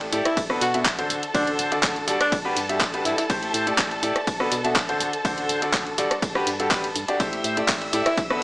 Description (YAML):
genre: piano house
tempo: 123 BPM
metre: 4/4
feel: straight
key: A dorian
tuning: A4 = 439 Hz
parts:
  - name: dark symphonic violin section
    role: sustained chords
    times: 0.0-8.4 s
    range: A4 to E6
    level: -30 LUFS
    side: equal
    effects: sidechain pumping
  - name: clear concert grand piano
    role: riff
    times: 0.0-8.4 s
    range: B2 to E5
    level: -25 LUFS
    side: equal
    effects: sidechain pumping
  - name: breakbeat sampler-style drum kit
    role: drums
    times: 0.0-8.3 s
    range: hi-hat, snare drum, tambourine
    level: -34 LUFS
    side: equal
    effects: none
  - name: garage drum kit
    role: drums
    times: 0.0-8.4 s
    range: handclaps, hi-hat, ride cymbal, rim click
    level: -26 LUFS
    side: equal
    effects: overdrive, studio reverb
  - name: organ-like FM bass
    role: bass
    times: 0.1-8.3 s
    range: D1 to B2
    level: -34 LUFS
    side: equal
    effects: sidechain pumping
  - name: breathy tenor saxophone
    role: melody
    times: 0.3-3.3, 8.1-8.2 s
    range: D4 to F#4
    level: -25 LUFS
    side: equal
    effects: none
  - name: electronic kick drum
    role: drums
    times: 0.4-8.3 s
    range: none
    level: -30 LUFS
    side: equal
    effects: studio reverb
room: light reverb, digital ambience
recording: small speaker sound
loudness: -20 LUFS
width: side -22 dB against mid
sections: 0.0-8.4 A section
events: none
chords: 0.4 Bm7; 1.1 D7; 2.3 Gmaj7; 3.3 Am7; 4.3 Bm7; 5.0 D7; 6.2 Gmaj7; 7.2 Am7